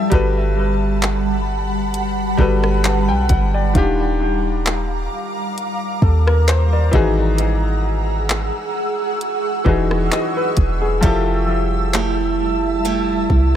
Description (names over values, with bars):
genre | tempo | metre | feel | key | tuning
contemporary R&B | 66 BPM | 4/4 | swing 54% on 16ths | unclear | A4 = 445 Hz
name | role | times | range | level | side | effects
clear baby grand piano | accompaniment | 0.0-13.6 s | Eb3 to A5 | -22 LUFS | left 3 dB | analog delay
ethereal airy pad | sustained chords | 0.0-13.6 s | G3 to E6 | -23 LUFS | right 1 dB | ensemble chorus, built-in reverb, tremolo
warm 808-style bass | bass | 0.1-13.6 s | Eb1 to Eb2 | -19 LUFS | equal | none
smooth R&B drum kit | drums | 0.1-13.5 s | handclaps, hi-hat, kick drum, rim click | -19 LUFS | equal | none
picked steel-string acoustic guitar | arpeggios | 11.0-13.6 s | F3 to G4 | -22 LUFS | right 8 dB | analog delay
room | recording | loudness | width
little or no reverb | echo-heavy mix | -16 LUFS | side -10 dB against mid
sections
0.0-13.6 A section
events
none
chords
0.1 Gmaj9; 3.8 Ebmaj9; 6.9 Emaj9; 11.0 Fmaj9